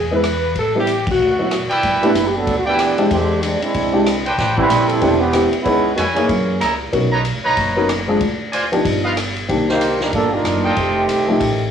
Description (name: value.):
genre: jazz, big band swing.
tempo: 188 BPM.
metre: 4/4.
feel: swing 61% on 8ths.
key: unclear.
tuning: A4 = 441 Hz.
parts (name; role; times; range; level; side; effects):
mellow saxophone section; melody; 0.0-1.7 s; F#4 to B4; -19 LUFS; left 1 dB; cassette tape.
upright bass; bass; 0.0-11.7 s; E1 to F#2; -25 LUFS; equal; none.
warm upright piano; accompaniment; 0.1-11.4 s; Eb3 to A#4; -19 LUFS; left 2 dB; cassette tape.
swinging big-band drum kit; drums; 0.2-11.5 s; hi-hat, kick drum, ride cymbal, rim click, snare drum; -24 LUFS; left 1 dB; none.
brilliant trumpet section; stabs; 1.7-11.1 s; D4 to A#5; -20 LUFS; right 1 dB; cassette tape.
warm trombone section; second line; 2.0-6.8, 9.7-11.7 s; D3 to C5; -18 LUFS; right 3 dB; cassette tape.
room: moderate spring reverb, RT60 1.7 s, small room ambience.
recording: home recording on cassette.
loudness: -15 LUFS.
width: side -8 dB against mid.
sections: 0.0-1.8 A section; 1.8-11.7 B section.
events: band accent 1.0; trombone section solo 1.8-11.7.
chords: 0.0 E; 0.6 Am7; 1.2 D13; 1.8 G6; 3.1 E7alt; 4.4 Am11; 5.7 C#m7; 6.3 F#13; 6.9 Bmaj9; 8.2 Dm7b5; 8.9 G7b13; 9.5 Cm9; 10.8 F9.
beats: 0.23 | 0.55 0.87 1.19 1.50 | 1.82 2.14 2.46 2.78 | 3.10 3.42 3.74 4.06 | 4.38 4.70 5.02 5.34 | 5.66 5.98 6.29 6.62 | 6.93 7.25 7.57 7.89 | 8.21 8.53 8.85 9.17 | 9.49 9.81 10.13 10.45 | 10.76 11.08 11.40.